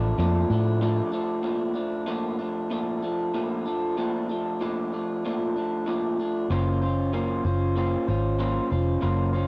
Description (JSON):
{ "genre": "indie pop, bedroom pop", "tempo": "95 BPM", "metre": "4/4", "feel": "straight", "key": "Bb major", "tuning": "A4 = 440 Hz", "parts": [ { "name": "warm velvety synth lead", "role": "melody", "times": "0.0-0.8 s", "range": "D5", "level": "-47 LUFS", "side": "equal", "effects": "none" }, { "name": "electric guitar through a small old amp", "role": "accompaniment", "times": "0.0-9.5 s", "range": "Bb2 to C5", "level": "-28 LUFS", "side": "equal", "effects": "subtle chorus, warbly pitch drift" }, { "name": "vintage muted fingered electric bass", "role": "bass", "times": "0.0-1.0, 6.5-9.5 s", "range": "F1 to A2", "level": "-27 LUFS", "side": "equal", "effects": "none" } ], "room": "light reverb", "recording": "home recording on cassette", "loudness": "-26 LUFS", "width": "mono", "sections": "0.0-1.4 A section; 1.4-9.5 B section", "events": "none", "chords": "0.0 Bbmaj7; 6.5 Gbmaj9#11", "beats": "0.18 0.81 | 1.45 2.08 2.71 3.34 | 3.97 4.60 5.23 5.86 | 6.50 7.13 7.76 8.39 | 9.02" }